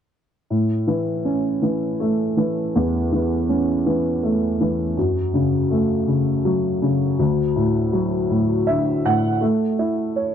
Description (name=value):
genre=pop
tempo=54 BPM (dotted quarters)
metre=6/8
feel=straight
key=A major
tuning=A4 = 441 Hz
part: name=dark upright piano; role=accompaniment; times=0.5-10.3 s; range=D2 to F#5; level=-18 LUFS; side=equal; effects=none
room=light reverb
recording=dark, warm production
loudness=-18 LUFS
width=side -8 dB against mid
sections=0.5-9.4 A section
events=upright piano fill 8.3-9.4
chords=0.5 A; 5.0 F#m; 7.2 D; 9.4 A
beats=| 0.50 1.62 | 2.73 3.85 | 4.96 6.07 | 7.19 8.30 | 9.41